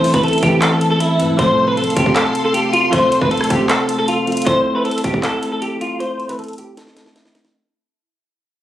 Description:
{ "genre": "hip hop, trap", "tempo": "156 BPM", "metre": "4/4", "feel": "half-time", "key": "A minor", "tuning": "A4 = 440 Hz", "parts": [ { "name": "clean electric guitar", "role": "melody", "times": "0.0-7.5 s", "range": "E4 to C5", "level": "-17 LUFS", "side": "equal", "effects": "ensemble chorus, low-pass filter, digital delay" }, { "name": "bell-like tine electric piano", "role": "accompaniment", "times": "0.0-7.6 s", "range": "E3 to C5", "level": "-19 LUFS", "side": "left 1 dB", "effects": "low-pass filter" }, { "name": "warm studio string section", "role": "sustained chords", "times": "0.0-4.4 s", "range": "A4 to C6", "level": "-26 LUFS", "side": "left 1 dB", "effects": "none" }, { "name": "hard-hitting 808-style bass", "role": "bass", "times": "0.0-4.4 s", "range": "F1 to A2", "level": "-26 LUFS", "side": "right 1 dB", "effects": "none" }, { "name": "trap drum kit", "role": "drums", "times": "0.0-7.5 s", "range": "handclaps, hi-hat, kick drum, rim click, snare drum", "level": "-21 LUFS", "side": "equal", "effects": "none" }, { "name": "big bright polysynth", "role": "stabs", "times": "1.4-1.8 s", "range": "C2 to F3", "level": "-24 LUFS", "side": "right 2 dB", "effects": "chorus" } ], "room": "little or no reverb", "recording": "recorded on a phone in the room, studio reverb", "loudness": "-14 LUFS", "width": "side -12 dB against mid", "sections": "0.0-4.5 A section; 4.5-7.5 B section", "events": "fade-out 4.5-7.5; filter sweep 4.5-7.5; drum fill 6.8-7.5", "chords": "0.0 Am; 1.4 F; 4.5 Am", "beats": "0.23 0.62 1.00 | 1.39 1.77 2.16 2.54 | 2.93 3.31 3.70 4.08 | 4.46 4.85 5.23 5.62 | 6.00 6.39 6.77 7.16" }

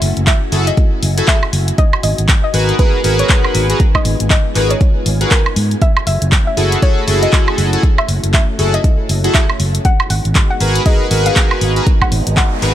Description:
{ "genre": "deep house", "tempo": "119 BPM", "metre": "4/4", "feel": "swing 60% on 16ths", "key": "unclear", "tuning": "A4 = 440 Hz", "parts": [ { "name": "soft round pluck", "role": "melody", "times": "0.0-12.6 s", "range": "A#4 to F#5", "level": "-23 LUFS", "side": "equal", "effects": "chorus, tape echo" }, { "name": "soft string machine", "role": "sustained chords", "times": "0.0-12.7 s", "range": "G#3 to G#5", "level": "-25 LUFS", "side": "left 1 dB", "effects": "ensemble chorus, sidechain pumping" }, { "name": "fingered electric bass", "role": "bass", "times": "0.0-12.7 s", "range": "F#1 to G#2", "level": "-16 LUFS", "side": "equal", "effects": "sidechain pumping" }, { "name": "deep house drum kit", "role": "drums", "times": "0.0-12.7 s", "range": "handclaps, hi-hat, woodblock", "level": "-19 LUFS", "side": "right 1 dB", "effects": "none" }, { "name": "electronic kick drum", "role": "drums", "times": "0.3-12.5 s", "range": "none", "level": "-13 LUFS", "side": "equal", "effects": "none" }, { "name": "chorused polysynth", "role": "stabs", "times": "0.5-12.7 s", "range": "E4 to B4", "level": "-18 LUFS", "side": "equal", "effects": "cassette tape, sidechain pumping, tape echo" }, { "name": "noise sweep", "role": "sound effects", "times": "12.1-12.7 s", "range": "none", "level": "-26 LUFS", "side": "right 6 dB", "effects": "none" } ], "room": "little or no reverb", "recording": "none", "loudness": "-11 LUFS", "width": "side -12 dB against mid", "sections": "0.0-12.7 A section", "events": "noise sweep 12.1-12.7", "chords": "0.0 F#m9; 1.8 G#m9; 5.8 F#m9; 9.8 G#m9", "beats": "0.27 0.77 1.28 | 1.78 2.29 2.79 3.29 | 3.80 4.30 4.81 5.31 | 5.82 6.32 6.82 7.33 | 7.83 8.34 8.84 9.35 | 9.85 10.35 10.86 11.36 | 11.87 12.37" }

